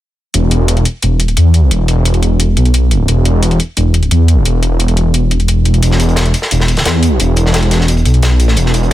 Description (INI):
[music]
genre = dark technical drum and bass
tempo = 175 BPM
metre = 4/4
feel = straight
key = unclear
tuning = A4 = 440 Hz
[part]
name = wide detuned saw bass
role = bass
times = 0.3-8.9 s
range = E1 to E2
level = -10 LUFS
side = equal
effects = chorus, overdrive
[part]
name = electronic hi-hat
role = drums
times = 0.3-8.8 s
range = none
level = -19 LUFS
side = left 1 dB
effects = none
[part]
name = crunchy breakbeat drum kit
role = drums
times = 5.8-8.9 s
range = hi-hat, snare drum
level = -18 LUFS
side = equal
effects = high-pass filter on hats, high-pass filter on snare, high-pass filter on room
[sound]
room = little or no reverb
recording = none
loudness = -9 LUFS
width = side -14 dB against mid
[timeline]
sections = 0.3-8.9 A section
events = none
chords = none